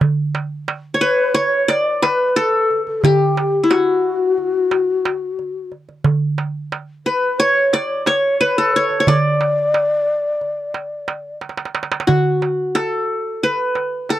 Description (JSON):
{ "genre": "Turkish makam ensemble", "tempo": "179 BPM (eighths)", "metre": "9/8", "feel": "straight", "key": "D makam rast", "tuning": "A4 = 443 Hz", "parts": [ { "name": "darbuka", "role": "percussion", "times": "0.0-14.2 s", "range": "none", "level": "-19 LUFS", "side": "right 3 dB", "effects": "none" }, { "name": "qanun", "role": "melody", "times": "0.9-14.2 s", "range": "E4 to D5", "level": "-17 LUFS", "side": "equal", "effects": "none" }, { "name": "breathy mellow low ney", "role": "second line", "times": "1.0-11.4 s", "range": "F#4 to D5", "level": "-19 LUFS", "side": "left 4 dB", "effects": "none" } ], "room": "little or no reverb", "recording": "dry, close 1970s-style studio recording", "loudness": "-15 LUFS", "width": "side -13 dB against mid", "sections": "0.0-12.1 A section; 12.1-14.2 B section", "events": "drum fill 11.4-12.1", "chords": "none" }